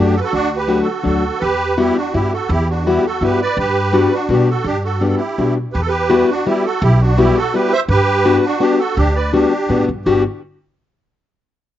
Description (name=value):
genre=musette waltz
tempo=166 BPM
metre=3/4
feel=straight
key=G major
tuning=A4 = 440 Hz
part: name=musette accordion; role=melody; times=0.0-10.2 s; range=D4 to E5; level=-18 LUFS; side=right 3 dB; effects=none
part: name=fingerpicked plugged-in steel-string acoustic guitar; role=accompaniment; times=0.0-10.2 s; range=F#3 to F#4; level=-16 LUFS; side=left 4 dB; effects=none
part: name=upright bass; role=bass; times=0.0-10.2 s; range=G1 to B2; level=-18 LUFS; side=equal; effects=none
room=little or no reverb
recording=recorded outdoors, with no room sound, nothing above 7.6 kHz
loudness=-13 LUFS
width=side -12 dB against mid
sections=0.0-5.7 A section; 5.7-10.1 B section; 10.1-11.1 C section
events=none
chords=0.0 D; 1.4 Emadd9; 3.6 Gmaj7; 5.7 Emadd9; 7.9 Gmaj7